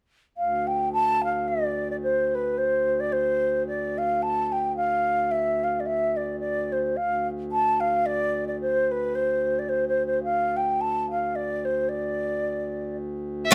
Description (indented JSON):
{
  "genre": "celtic folk, Celtic waltz",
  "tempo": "110 BPM",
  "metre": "3/4",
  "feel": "swing 56% on 8ths",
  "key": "D dorian",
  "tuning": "A4 = 440 Hz",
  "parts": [
    { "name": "mellow hollow baroque flute", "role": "melody", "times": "0.4-13.5 s", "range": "B4 to A5", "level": "-26 LUFS", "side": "equal", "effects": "none" },
    { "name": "pedal harmonium", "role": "drone", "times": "0.4-13.5 s", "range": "D2", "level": "-34 LUFS", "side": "equal", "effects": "none" },
    { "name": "clear fiddle", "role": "second line", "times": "13.4-13.5 s", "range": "E5 to F5", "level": "-24 LUFS", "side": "equal", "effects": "none" },
    { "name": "picked acoustic archtop guitar", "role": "accompaniment", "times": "13.5 s", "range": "D3", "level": "-13 LUFS", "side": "equal", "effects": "none" }
  ],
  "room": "moderate studio reverb, RT60 0.7 s",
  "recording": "band playing live in one room",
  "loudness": "-26 LUFS",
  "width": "mono",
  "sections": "0.4-13.5 A section",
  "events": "none",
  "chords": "none"
}